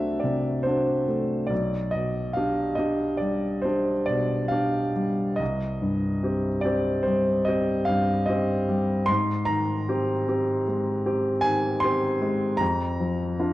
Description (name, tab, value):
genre	classical, romantic nocturne for solo piano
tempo	45-53 BPM (dotted quarters)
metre	9/8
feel	rubato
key	C minor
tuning	A4 = 441 Hz
part	warm baby grand piano	solo	0.0-13.5 s	B1 to C6	-22 LUFS	equal	none
room	wet recital hall reverb, RT60 1.5 s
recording	dark, warm production, nothing above 10.8 kHz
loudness	-22 LUFS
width	side -16 dB against mid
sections	0.0-13.5 A section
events	none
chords	0.0 D7/C; 1.5 G/B; 5.4 Cm; 9.1 Abmaj7; 12.6 Dm/F